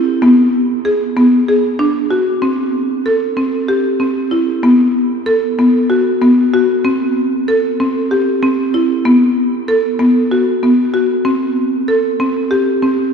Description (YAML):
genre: contemporary instrumental, contemporary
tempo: 190 BPM (eighths)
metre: 7/8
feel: straight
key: unclear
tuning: A4 = 442 Hz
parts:
  - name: buzzing marimba with hard mallets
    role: solo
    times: 0.0-13.0 s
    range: B3 to A4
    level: -12 LUFS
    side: equal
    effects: none
room: wet cathedral reverb, RT60 5.4 s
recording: recorded in a church or concert hall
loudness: -12 LUFS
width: side -6 dB against mid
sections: 0.0-2.4 A section; 2.4-13.1 B section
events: none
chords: none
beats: | 0.22 0.53 0.85 1.17 1.48 1.80 2.11 | 2.43 2.74 3.06 3.38 3.69 4.01 4.32 | 4.64 4.95 5.27 5.58 5.90 6.22 6.53 | 6.85 7.16 7.48 7.79 8.11 8.42 8.74 | 9.05 9.37 9.68 10.00 10.31 10.63 10.94 | 11.26 11.57 11.88 12.20 12.51 12.83